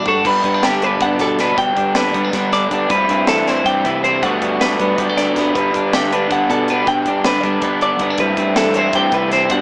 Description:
math rock and midwest emo; 318 BPM (eighths); 7/8; straight; G major; A4 = 441 Hz
twelve-string electric guitar; accompaniment; 0.0-9.6 s; G2 to F#4; -20 LUFS; equal; spring reverb
twelve-string electric guitar; arpeggios; 0.0-9.6 s; G4 to G5; -17 LUFS; equal; spring reverb
fuzz fingered electric bass; bass; 0.0-9.6 s; G2 to G3; -23 LUFS; equal; overdrive
crisp fusion drum kit; drums; 0.1-9.6 s; crash cymbal, hi-hat, kick drum, snare drum, toms; -24 LUFS; equal
raw garage guitar; riff; 0.2-9.6 s; G2 to E4; -20 LUFS; equal; overdrive
moderate small room reverb, RT60 0.6 s; small speaker sound; -13 LUFS; side -32 dB against mid
0.3-9.6 A section
drum fill 0.0
0.3 G; 2.9 Am7/G; 4.2 Bm7/G; 8.2 Am7/G

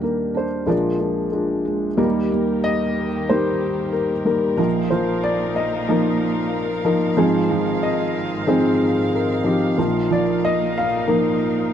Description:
acoustic folk-pop ballad; 92 BPM; 4/4; straight; Eb major; A4 = 440 Hz
dark upright piano; melody; 0.0-11.7 s; Ab1 to F5; -19 LUFS; left 2 dB
felt-muted upright piano; arpeggios; 0.0-11.7 s; Eb3 to G4; -24 LUFS; right 8 dB
muted chamber string section; sustained chords; 2.0-11.7 s; Eb2 to F5; -28 LUFS; right 1 dB
light reverb; dry, close 1970s-style studio recording; -18 LUFS; side -9 dB against mid
0.0-2.0 A section; 2.0-11.7 B section
upright piano fill 11.4-11.7
0.0 Ebmaj7; 0.7 Bb7; 2.0 Eb; 4.6 Bbsus4; 7.2 Ab6; 9.8 Bbsus4

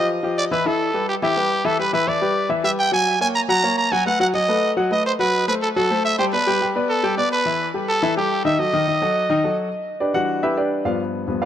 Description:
latin; 212 BPM; 4/4; straight; E minor; A4 = 440 Hz
growling trumpet; melody; 0.0-9.6 s; G4 to A#5; -20 LUFS; right 1 dB; tape echo
clear grand piano; accompaniment; 0.0-11.5 s; G2 to G5; -21 LUFS; left 2 dB
moderate plate reverb, RT60 2.7 s; -18 LUFS; side -10 dB against mid
0.7-9.7 A section; 9.7-11.5 B section
grand piano solo 9.7-11.5
0.1 G7; 0.7 Emadd11; 2.9 F#; 4.1 B7; 5.2 F#dim; 6.3 G; 7.5 Emadd11; 8.6 D#dim; 9.7 Em7; 10.9 G7

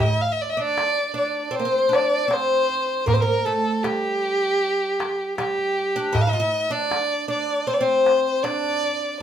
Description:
Arabic maqam ensemble; 78 BPM; 4/4; straight; D maqam bayati; A4 = 442 Hz
dark violin; melody; 0.0-9.2 s; G4 to F5; -22 LUFS; right 1 dB
oud; second line; 0.0-9.2 s; G3 to F4; -24 LUFS; left 1 dB
darbuka; percussion; 0.0-8.9 s; -25 LUFS; equal
wet studio reverb, RT60 0.5 s; minimal, uncompressed stereo recording; -19 LUFS; side -9 dB against mid
0.0-9.2 A section

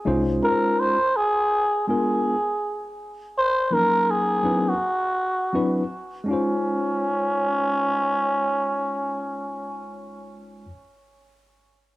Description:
hip hop; 82 BPM; 4/4; swing 61% on 16ths; A4 = 440 Hz
trumpet with cup mute; melody; 0.0-10.0 s; C#4 to B#4; -22 LUFS; equal; cassette tape, analog delay, plate reverb
mellow tine electric piano; accompaniment; 0.1-10.7 s; E#3 to B#4; -25 LUFS; left 1 dB; medium stereo tremolo
moderate studio reverb, RT60 0.6 s; home recording on cassette, faint mains hum; -20 LUFS; side -18 dB against mid
0.0-6.3 A section; 6.3-9.2 B section
0.4 C#maj9; 1.9 A#7b9; 3.4 D#m7; 4.8 D13; 6.3 C#maj9

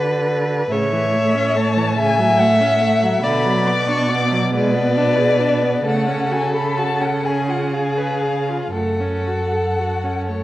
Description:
classical, slow romantic movement for string quartet; 38-48 BPM (dotted quarters); 6/8; rubato; F# minor; A4 = 442 Hz
rich violin; second line; 0.0-10.4 s; G#4 to E5; -21 LUFS; left 1 dB
rich viola; accompaniment; 0.0-10.4 s; C#3 to B4; -23 LUFS; right 1 dB
clear cello; bass; 0.0-10.4 s; F#2 to D3; -22 LUFS; right 2 dB
rich violin; melody; 0.7-10.4 s; C#5 to D6; -22 LUFS; left 3 dB
wet concert hall reverb, RT60 1.8 s; worn, warbling old tape, cassette tape, warbly pitch drift; -16 LUFS; side -15 dB against mid
0.0-10.4 A section
0.0 D6; 0.7 A; 2.0 F#m/A; 3.2 Bm; 4.5 G#dim/B; 5.9 F#m/C#; 7.3 C#7; 8.7 F#m

